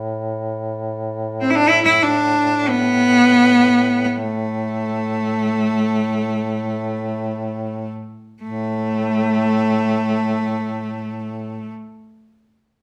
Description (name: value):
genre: caucasian folk, Caucasian lament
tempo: free time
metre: none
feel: none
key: unclear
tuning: A4 = 440 Hz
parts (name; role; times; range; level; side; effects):
- mellow duduk; drone; 0.0-11.7 s; A2; -28 LUFS; equal; none
- bright cello; melody; 1.4-11.7 s; A3 to E4; -19 LUFS; equal; slapback echo
room: moderate large studio reverb, RT60 1.0 s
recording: band playing live in one room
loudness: -19 LUFS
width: mono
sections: 0.0-8.4 A section; 8.4-12.7 B section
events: slowing down 0.0-8.4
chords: none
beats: free time